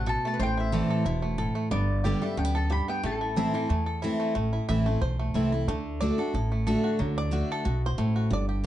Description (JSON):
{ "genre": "bluegrass", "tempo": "182 BPM", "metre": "4/4", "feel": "straight", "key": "A dorian", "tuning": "A4 = 440 Hz", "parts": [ { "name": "bluegrass banjo", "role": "melody", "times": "0.0-8.7 s", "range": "E3 to E5", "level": "-34 LUFS", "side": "right 2 dB", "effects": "none" }, { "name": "mandolin", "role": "melody", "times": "0.0-4.2 s", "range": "D5 to B5", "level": "-33 LUFS", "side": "left 2 dB", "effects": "none" }, { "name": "lap resonator guitar", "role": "second line", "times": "0.0-4.2 s", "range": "A4 to D5", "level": "-36 LUFS", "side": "left 3 dB", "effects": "none" }, { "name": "picked steel-string acoustic guitar", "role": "accompaniment", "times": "0.0-8.7 s", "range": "E2 to G4", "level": "-28 LUFS", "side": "equal", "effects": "none" }, { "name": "upright bass", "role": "bass", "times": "0.0-8.7 s", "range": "E1 to E2", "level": "-29 LUFS", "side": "equal", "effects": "none" } ], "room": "moderate small room reverb, RT60 0.6 s", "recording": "dark, warm production, nothing above 10.5 kHz", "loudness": "-25 LUFS", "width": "side -13 dB against mid", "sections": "0.0-4.4 A section; 4.4-8.7 B section", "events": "five-string banjo solo 4.4-8.7", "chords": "0.4 Am; 1.7 G; 3.0 Am; 5.7 D" }